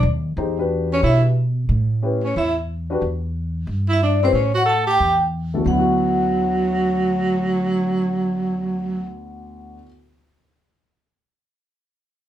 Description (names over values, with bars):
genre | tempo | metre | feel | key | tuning
jazz | 181 BPM | 4/4 | swing 64% on 8ths | D major | A4 = 440 Hz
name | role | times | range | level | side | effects
vibraphone with medium hard mallets | melody | 0.0-9.8 s | C5 to A5 | -23 LUFS | left 2 dB | none
breathy tenor saxophone | second line | 0.0-9.1 s | F#3 to A4 | -21 LUFS | right 2 dB | none
upright bass | bass | 0.0-9.8 s | D2 to B2 | -22 LUFS | right 1 dB | none
dark concert grand piano | accompaniment | 0.4-9.9 s | D2 to C5 | -24 LUFS | left 1 dB | none
room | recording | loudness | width
wet studio ambience, RT60 0.5 s | heard from further back in the room | -18 LUFS | side -11 dB against mid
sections
0.4-5.7 A section; 5.7-8.3 B section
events
none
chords
0.4 Em9; 1.7 A7; 3.0 Em; 4.3 A5; 5.7 D69